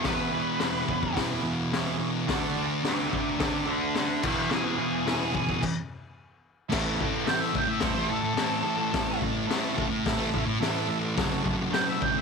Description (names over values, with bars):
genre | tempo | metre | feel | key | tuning
garage rock duo or trio | 108 BPM | 4/4 | straight | A major | A4 = 440 Hz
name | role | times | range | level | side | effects
octave-fuzz lead guitar | melody | 0.0-12.2 s | G#4 to G5 | -31 LUFS | equal | distortion
combo organ | sustained chords | 0.0-12.1 s | D4 to E5 | -37 LUFS | right 13 dB | none
thick fuzz guitar | riff | 0.0-12.2 s | E2 to D4 | -28 LUFS | right 1 dB | distortion
raw garage drum kit | drums | 0.0-12.1 s | crash cymbal, hi-hat, kick drum, snare drum | -31 LUFS | left 4 dB | none
room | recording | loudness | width
light reverb, small room ambience | 1960s-style stereo | -25 LUFS | side -5 dB against mid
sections
0.0-6.7 A section; 6.7-12.2 B section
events
stop 5.6-6.7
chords
0.0 E; 2.3 D; 4.2 E; 6.7 A; 11.2 F#m